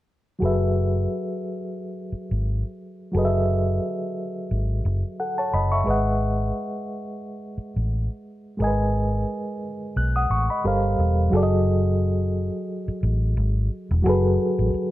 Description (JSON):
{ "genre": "R&B, neo-soul", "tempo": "88 BPM", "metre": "4/4", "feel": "swing 56% on 16ths", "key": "F# dorian", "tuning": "A4 = 440 Hz", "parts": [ { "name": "reed electric piano", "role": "accompaniment", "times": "0.4-14.9 s", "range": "F#3 to F#6", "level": "-24 LUFS", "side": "equal", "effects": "fast tremolo" }, { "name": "vintage muted fingered electric bass", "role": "bass", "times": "0.4-14.8 s", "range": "E1 to B1", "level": "-22 LUFS", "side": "equal", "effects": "none" } ], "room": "light reverb", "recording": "none", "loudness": "-21 LUFS", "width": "side -15 dB against mid", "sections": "0.4-11.3 A section; 11.3-14.9 B section", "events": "none", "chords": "0.4 F#m11; 5.9 G#m7; 10.6 Gm11; 11.3 F#m69" }